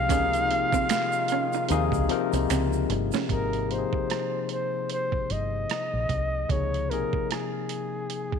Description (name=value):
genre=R&B, neo-soul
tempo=75 BPM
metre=4/4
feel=swing 57% on 16ths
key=Ab major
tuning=A4 = 440 Hz
part: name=breathy flugelhorn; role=melody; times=0.0-8.4 s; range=Ab4 to F5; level=-28 LUFS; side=equal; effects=none
part: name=barky tine electric piano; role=accompaniment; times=0.0-8.4 s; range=C3 to Bb4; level=-30 LUFS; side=left 11 dB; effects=none
part: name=dark brass ensemble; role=sustained chords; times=0.0-3.3 s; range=C3 to F4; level=-37 LUFS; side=right 3 dB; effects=none
part: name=deep dub fingered electric bass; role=bass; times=0.0-7.0 s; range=G1 to Eb2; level=-29 LUFS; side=right 1 dB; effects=none
part: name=hollow-body jazz guitar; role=second line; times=0.1-3.2 s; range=C4 to Eb4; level=-33 LUFS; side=right 13 dB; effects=none
part: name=boom bap sampler-style drum kit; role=drums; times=0.1-8.4 s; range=finger snaps, hi-hat, kick drum, rim click, snare drum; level=-31 LUFS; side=right 5 dB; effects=none
part: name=tube shaker and finger snaps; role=percussion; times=0.1-3.3 s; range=none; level=-40 LUFS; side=right 14 dB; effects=none
room=light reverb, small room ambience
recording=1960s-style stereo with parts hard left and right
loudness=-24 LUFS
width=side -6 dB against mid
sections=0.0-3.3 A section; 3.3-8.4 B section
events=drum fill 2.5-3.3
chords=0.1 Dbmaj9; 3.3 Abmaj9; 6.5 Dbmaj9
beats=| 0.10 0.90 1.70 2.50 | 3.30 4.10 4.90 5.70 | 6.50 7.30 8.10